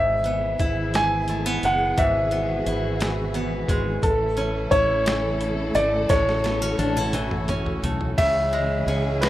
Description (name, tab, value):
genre	six-eight pop ballad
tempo	58 BPM (dotted quarters)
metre	6/8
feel	straight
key	unclear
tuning	A4 = 440 Hz
part	clear grand piano	melody	0.0-9.3 s	A4 to G#5	-23 LUFS	equal	none
part	picked acoustic archtop guitar	accompaniment	0.0-9.3 s	G#2 to G#4	-27 LUFS	equal	none
part	warm studio string section	sustained chords	0.0-9.3 s	B2 to A4	-31 LUFS	left 1 dB	none
part	fretless electric bass	bass	0.0-9.3 s	F#1 to C#2	-28 LUFS	equal	none
part	boom bap sampler-style drum kit	drums	0.2-9.3 s	crash cymbal, hi-hat, kick drum, ride cymbal, snare drum, toms	-27 LUFS	equal	none
room	studio reverb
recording	rough home demo mix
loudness	-20 LUFS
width	side -14 dB against mid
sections	0.0-8.2 A section; 8.2-9.3 B section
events	drum fill 6.1-8.2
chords	0.0 E; 4.0 A; 8.2 C#m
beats	0.94 | 1.98 3.00 | 4.03 5.06 | 6.10 7.13 | 8.18 9.22